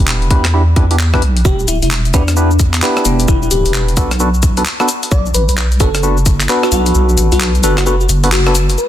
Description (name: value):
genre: UK garage, two-step garage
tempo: 131 BPM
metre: 4/4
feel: swing 63% on 16ths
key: unclear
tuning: A4 = 439 Hz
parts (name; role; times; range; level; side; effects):
- percussive organ stab; stabs; 0.0-8.5 s; B3 to B4; -18 LUFS; equal; chorus, tape echo
- deep soft wobble bass; bass; 0.0-8.8 s; D1 to E2; -14 LUFS; equal; chorus, sidechain pumping
- breakbeat sampler-style drum kit; drums; 0.1-8.9 s; handclaps, hi-hat, rim click, shaker; -18 LUFS; left 2 dB; small room ambience, soft clipping on snare
- electronic kick drum; drums; 0.3-6.4 s; none; -15 LUFS; equal; small room ambience
- bell-like FM electric piano; melody; 1.4-8.9 s; B3 to D5; -19 LUFS; left 2 dB; chorus, phaser, tape echo
- soft string machine; sustained chords; 8.8-8.9 s; G#3 to B4; -42 LUFS; equal; none
- granular cloud pad; texture; 8.8-8.9 s; none; barely audible; none; none
room: little or no reverb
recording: dense, heavily limited modern master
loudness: -10 LUFS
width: side -12 dB against mid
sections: 0.0-8.8 A section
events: kick drops out 6.9-8.8; band accent 8.3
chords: 0.0 Em7; 4.0 Bm7